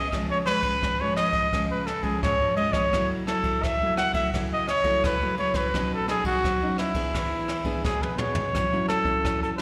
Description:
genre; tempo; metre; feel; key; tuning
samba and choro; 86 BPM; 4/4; straight; E major; A4 = 442 Hz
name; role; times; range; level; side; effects
clear trumpet; melody; 0.0-9.6 s; E4 to F#5; -27 LUFS; equal; slapback echo
nylon-string guitar; accompaniment; 0.0-9.6 s; G#2 to G#4; -32 LUFS; equal; slapback echo
jazz brush drum kit; drums; 0.1-9.6 s; hi-hat, kick drum, ride cymbal, rim click, snare drum, toms; -32 LUFS; equal; none
room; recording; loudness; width
moderate club reverb, RT60 0.6 s; live gig heard through the venue's PA, recital hall reverb; -25 LUFS; mono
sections
0.0-8.5 A section; 8.5-9.6 B section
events
drum fill 7.8-8.5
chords
0.1 C#; 2.9 F#m7/C#; 5.7 Badd9; 7.1 E7; 8.5 A6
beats
| 0.13 0.83 1.53 2.23 | 2.93 3.63 4.34 5.04 | 5.74 6.44 7.14 7.85 | 8.55 9.25

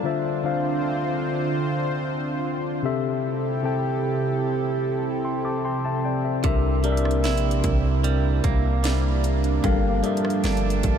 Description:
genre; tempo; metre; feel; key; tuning
contemporary R&B; 75 BPM; 4/4; straight; unclear; A4 = 440 Hz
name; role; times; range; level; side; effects
mellow tine electric piano; accompaniment; 0.0-11.0 s; C3 to D6; -25 LUFS; moving between left 8 dB and right 2 dB; auto-pan
warm analog pad; sustained chords; 0.0-11.0 s; C3 to A5; -28 LUFS; right 2 dB; chorus
direct-recorded clean electric guitar; arpeggios; 6.4-11.0 s; G2 to E4; -29 LUFS; right 11 dB; spring reverb, tape echo
long sustained 808-style bass; bass; 6.4-11.0 s; G1 to C2; -23 LUFS; equal; none
trap drum kit; drums; 6.4-11.0 s; hi-hat, kick drum, rim click, snare drum; -28 LUFS; equal; none
room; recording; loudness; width
moderate huge ambient reverb, RT60 7.7 s; dreamy mix soaked in reverb; -21 LUFS; side -8 dB against mid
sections
0.0-11.0 A section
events
none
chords
0.0 Dm9; 2.8 Am7/C; 6.4 C7; 9.6 Gm7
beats
| 0.04 0.84 1.64 2.44 | 3.24 4.04 4.84 5.64 | 6.44 7.24 8.04 8.84 | 9.64 10.44

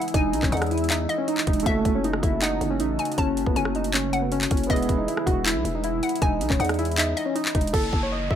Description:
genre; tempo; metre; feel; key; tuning
hip hop, trap; 158 BPM; 4/4; half-time; F# dorian; A4 = 439 Hz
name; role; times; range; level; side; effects
warbly lo-fi synth keys; melody; 0.0-8.4 s; A3 to E5; -26 LUFS; right 1 dB; chorus, ping-pong delay
hollow square pluck; second line; 0.0-7.3 s; D#5 to A5; -31 LUFS; left 3 dB; chorus, ping-pong delay
warm concert grand piano; accompaniment; 0.0-7.8 s; A3 to A4; -35 LUFS; right 7 dB; none
glassy FM pad; sustained chords; 0.0-7.7 s; C#3 to F#4; -34 LUFS; left 1 dB; ensemble chorus, built-in reverb
trap drum kit; drums; 0.0-8.4 s; crash cymbal, handclaps, hi-hat, kick drum, rim click; -25 LUFS; equal; none
growling 808-style bass; bass; 0.1-8.4 s; E1 to E2; -28 LUFS; equal; none
downlifter; sound effects; 7.7-8.4 s; none; -32 LUFS; equal; none
room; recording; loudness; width
little or no reverb; none; -21 LUFS; side -9 dB against mid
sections
0.0-7.7 A section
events
hi-hats muted 7.7-8.4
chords
0.0 Emaj7; 1.7 F#m; 4.7 Emaj7; 7.7 F#m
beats
| 0.14 0.52 0.90 1.28 | 1.66 2.04 2.42 2.80 | 3.18 3.56 3.94 4.32 | 4.70 5.08 5.46 5.84 | 6.22 6.60 6.98 7.36 | 7.74 8.12

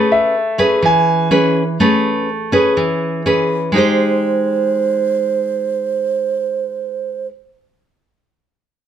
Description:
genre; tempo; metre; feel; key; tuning
bossa nova; 124 BPM; 4/4; straight; Ab major; A4 = 441 Hz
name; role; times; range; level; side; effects
nylon-string guitar; accompaniment; 0.0-7.3 s; E3 to C5; -15 LUFS; equal; none
warm concert grand piano; melody; 0.1-1.5 s; E5 to G#5; -15 LUFS; equal; none
breathy mellow bass ocarina; second line; 3.7-7.3 s; C5; -18 LUFS; right 7 dB; none
room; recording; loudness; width
moderate studio reverb, RT60 0.8 s; none; -14 LUFS; side -9 dB against mid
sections
0.0-3.7 A section; 3.7-7.6 B section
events
grand piano solo 0.0-3.7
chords
0.0 Amaj9; 3.7 Abmaj7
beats
0.34 0.83 1.31 | 1.79 2.28 2.77 3.25 | 3.74 4.22 4.71 5.19 | 5.68 6.16 6.65 7.13

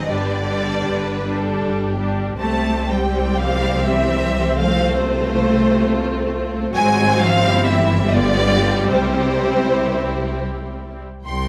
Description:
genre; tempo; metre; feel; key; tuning
classical, slow romantic movement for string orchestra; 72-86 BPM; 3/4; rubato; C major; A4 = 440 Hz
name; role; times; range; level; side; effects
warm symphonic violin section; melody; 0.0-11.5 s; C5 to C6; -24 LUFS; equal; none
warm symphonic violin section; second line; 0.0-11.5 s; E4 to G5; -28 LUFS; equal; none
rich symphonic viola section; accompaniment; 0.0-11.0 s; Gb3 to D4; -24 LUFS; equal; none
rich symphonic cello section; bass; 0.0-11.5 s; C2 to A3; -27 LUFS; equal; none
warm symphonic double bass section; bass; 0.1-11.5 s; G1 to C2; -25 LUFS; equal; none
room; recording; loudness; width
light reverb; close, detailed microphones; -18 LUFS; mono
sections
0.0-11.3 A section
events
none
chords
0.1 G; 2.4 C; 4.6 F/C; 6.7 Ab7; 7.4 C/G; 8.1 G7; 8.9 C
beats
| 0.10 0.87 1.64 | 2.40 3.15 3.87 | 4.59 5.32 6.03 | 6.74 7.43 8.14 | 8.89 9.69 10.47 | 11.27

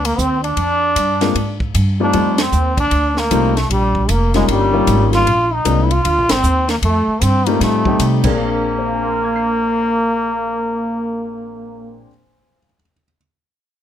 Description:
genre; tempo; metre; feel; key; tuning
jazz, small-group swing and bop; 154 BPM; 4/4; swing 64% on 8ths; Bb mixolydian; A4 = 436 Hz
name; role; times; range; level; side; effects
trombone with metal mute; melody; 0.0-12.1 s; G3 to F4; -19 LUFS; left 2 dB; none
trombone with plunger mute; second line; 0.0-12.0 s; G3 to F4; -22 LUFS; right 6 dB; none
upright bass; bass; 0.0-12.0 s; F1 to C3; -18 LUFS; equal; none
compact cocktail drum kit; drums; 0.0-8.3 s; crash cymbal, hi-hat, kick drum, ride cymbal, snare drum; -24 LUFS; equal; none
warm concert grand piano; accompaniment; 1.2-13.1 s; Bb2 to C7; -19 LUFS; left 4 dB; none
room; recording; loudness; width
light reverb; close, detailed microphones; -14 LUFS; side -10 dB against mid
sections
0.0-8.4 A section; 8.4-11.5 B section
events
band accent 2.3, 6.2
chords
0.0 Bb7 (rootless); 2.1 F7; 3.7 Eb7; 5.3 Bb7; 6.8 F7; 8.2 Bb7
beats
0.18 | 0.57 0.96 1.36 1.75 | 2.14 2.53 2.92 3.31 | 3.70 4.09 4.48 4.87 | 5.26 5.65 6.04 6.43 | 6.82 7.21 7.61 8.00 | 8.39 8.78 9.17 9.56 | 9.95 10.35 10.74 11.13

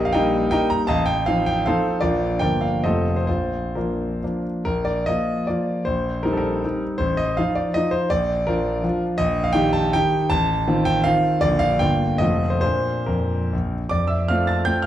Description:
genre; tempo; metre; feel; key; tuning
classical, romantic triple-time dance for piano with dotted rhythms; 123-178 BPM; 3/4; rubato; Bb major; A4 = 440 Hz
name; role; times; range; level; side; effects
clear grand piano; solo; 0.0-14.9 s; F1 to A6; -19 LUFS; equal; none
room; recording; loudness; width
wet recital hall reverb, RT60 1.6 s; dark, warm production; -19 LUFS; side -12 dB against mid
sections
0.0-4.7 A section; 4.7-13.9 A section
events
none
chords
0.0 Eb/Bb; 0.9 F7/A; 2.0 Bb; 2.4 Gm7; 2.8 F7; 3.3 Bb; 5.9 Cm7/Bb; 7.0 F7/A; 8.1 Bb; 9.2 Eb/Bb; 10.3 F7/A; 11.4 Bb; 11.8 Gm7; 12.2 F7; 12.6 Bb; 13.9 F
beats
0.15 0.52 | 0.89 1.27 1.66 | 2.02 2.41 2.84 | 3.28 3.75 4.22 | 4.66 5.07 5.47 | 5.85 6.24 6.63 | 7.00 7.38 7.75 | 8.11 8.47 8.84 | 9.20 9.56 9.94 | 10.31 10.68 11.06 | 11.43 11.82 12.22 | 12.63 13.09 13.53 | 13.92 14.30 14.67

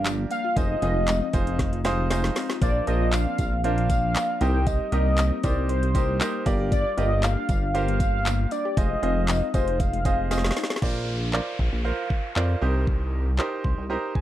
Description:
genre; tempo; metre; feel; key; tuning
dance-pop; 117 BPM; 4/4; straight; F dorian; A4 = 440 Hz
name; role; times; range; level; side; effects
warm velvety synth lead; melody; 0.0-10.6 s; C5 to G5; -28 LUFS; equal; chorus, slapback echo
bright grand piano; accompaniment; 0.0-14.2 s; D4 to C6; -30 LUFS; right 3 dB; sidechain pumping
soft round pluck; arpeggios; 0.0-10.8 s; F3 to Ab4; -33 LUFS; left 11 dB; chorus, sidechain pumping, slapback echo
chorused synth bass; bass; 0.0-14.0 s; F1 to F2; -24 LUFS; equal; sidechain pumping
smooth R&B drum kit; drums; 0.1-14.2 s; crash cymbal, handclaps, hi-hat, kick drum, snare drum; -26 LUFS; equal; none
tambourine; percussion; 0.1-10.7 s; none; -44 LUFS; left 14 dB; none
downlifter; sound effects; 10.8-14.2 s; none; -37 LUFS; equal; none
room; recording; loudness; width
little or no reverb; dry, close 1970s-style studio recording; -22 LUFS; side -13 dB against mid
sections
0.0-10.8 A section; 10.8-14.2 B section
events
drum fill 1.6-2.6, 10.3-10.8; grand piano fill 13.4-14.2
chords
0.0 Gm7; 0.6 Fm7; 2.6 Bbadd9; 4.4 Cm7; 6.5 Gm7; 8.8 Fm7; 10.8 Bbadd9; 12.6 Cm7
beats
0.05 | 0.57 1.08 1.59 2.10 | 2.62 3.13 3.64 4.16 | 4.67 5.18 5.70 6.21 | 6.72 7.23 7.75 8.26 | 8.77 9.28 9.80 10.31 | 10.82 11.34 11.85 12.36 | 12.87 13.39 13.90

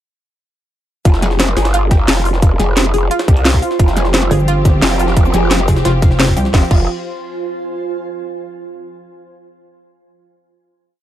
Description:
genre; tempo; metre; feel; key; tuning
dark technical drum and bass; 175 BPM; 4/4; straight; F minor; A4 = 440 Hz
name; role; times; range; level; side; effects
analog pluck; arpeggios; 1.1-6.9 s; F4 to F5; -21 LUFS; left 1 dB; chorus, phaser, sidechain pumping, dub echo
growl bass; bass; 1.1-6.9 s; F1 to C2; -16 LUFS; equal; chorus, overdrive
drum and bass drum kit; drums; 1.1-6.8 s; cabasa, crash cymbal, hi-hat, snare drum; -17 LUFS; equal; none
electronic kick drum; drums; 1.1-6.8 s; none; -11 LUFS; equal; overdrive
jungle sampler-style drum kit; drums; 1.1-6.5 s; hi-hat, snare drum; -24 LUFS; equal; none
granular cloud pad; texture; 2.6-7.9 s; F4 to Ab5; -24 LUFS; right 4 dB; built-in reverb, sidechain pumping
warm symphonic string section; sustained chords; 3.8-6.7 s; F3 to G4; -22 LUFS; right 1 dB; sidechain pumping
metallic wobble bass; bass; 4.3-6.5 s; F1 to C2; -14 LUFS; equal; chorus
room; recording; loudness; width
digital ambience; dark, warm production; -11 LUFS; side -12 dB against mid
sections
1.1-6.5 drop; 6.5-7.9 final chord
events
drop 1.1-6.5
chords
1.1 Fm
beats
| 1.05 1.40 1.74 2.08 | 2.42 2.77 3.11 3.45 | 3.79 4.14 4.48 4.82 | 5.17 5.51 5.85 6.20 | 6.54 6.88 7.22 7.57

